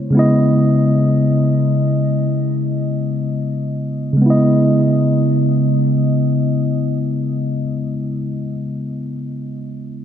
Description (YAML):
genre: R&B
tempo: free time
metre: none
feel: none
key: C# minor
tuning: A4 = 440 Hz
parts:
  - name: mellow tine electric piano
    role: accompaniment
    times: 0.0-10.0 s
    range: C#3 to D#5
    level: -15 LUFS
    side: equal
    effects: low-pass filter
room: wet huge ambient reverb, RT60 7.7 s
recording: dreamy mix soaked in reverb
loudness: -14 LUFS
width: side -9 dB against mid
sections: 0.0-4.2 A section; 4.2-8.3 B section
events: filter sweep on tine electric piano 0.0-4.2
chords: 0.0 C#m9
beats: free time